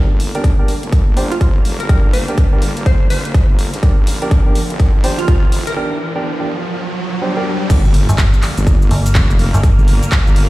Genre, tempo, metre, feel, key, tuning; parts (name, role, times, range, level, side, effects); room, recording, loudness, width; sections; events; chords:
bass house; 124 BPM; 4/4; swing 62% on 16ths; G minor; A4 = 436 Hz
dark symphonic string section; sustained chords; 0.0-10.5 s; D3 to Bb3; -26 LUFS; equal; sidechain pumping, low-pass filter
dark baby grand piano; stabs; 0.0-7.5 s; D4 to C5; -23 LUFS; right 1 dB; sidechain pumping, digital delay
wobble bass; bass; 0.0-10.5 s; F1 to G2; -19 LUFS; equal; chorus, tube saturation, sidechain pumping, high-pass filter
riser and impact; sound effects; 2.8-9.6 s; -24 LUFS; right 1 dB
big-room dance drum kit; drums; 0.2-10.5 s; crash cymbal, handclaps, hi-hat, shaker; -25 LUFS; equal
electronic kick drum; drums; 0.4-10.2 s; -12 LUFS; equal
glassy wavetable pluck; melody; 1.3-5.7 s; F4 to C5; -25 LUFS; right 1 dB; chorus, digital delay
metallic FM bass; bass; 8.1-9.8 s; G1; -13 LUFS; equal; tube saturation, sidechain pumping
little or no reverb; played on a big sound system in a bare room, stone room reverb; -12 LUFS; side -18 dB against mid
0.0-7.7 A section; 7.7-10.5 B section
build-up 0.0-7.7; filter sweep on string section 0.0-7.7; riser 2.8-7.7; drum fill 3.8-5.8; break 5.8-7.7; drop 7.7-10.5; impact 7.7-9.6
0.0 Gm